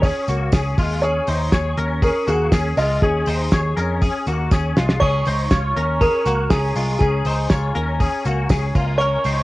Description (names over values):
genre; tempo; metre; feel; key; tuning
jangly indie pop; 120 BPM; 4/4; straight; Db major; A4 = 440 Hz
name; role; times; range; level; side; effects
dark upright piano; melody; 0.0-9.4 s; Ab4 to Eb5; -23 LUFS; equal; cassette tape
direct-recorded clean electric guitar; arpeggios; 0.0-9.4 s; Ab3 to Db5; -24 LUFS; left 3 dB; ensemble chorus, cassette tape
vintage muted picked electric bass; bass; 0.0-9.4 s; C2 to F2; -22 LUFS; equal; none
cloth-damped thuddy drum kit; drums; 0.0-9.4 s; crash cymbal, hi-hat, kick drum, snare drum, splash cymbal; -20 LUFS; equal; cassette tape
tambourine; percussion; 0.0-9.4 s; none; -42 LUFS; right 7 dB; none
glockenspiel with hard plastic mallets; second line; 5.0-9.4 s; Ab5 to Db6; -26 LUFS; right 2 dB; cassette tape
room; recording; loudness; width
light reverb, studio reverb; home recording on cassette, nothing above 10.3 kHz; -17 LUFS; side -18 dB against mid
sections
0.0-9.4 A section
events
drum fill 4.5-5.0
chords
0.0 Db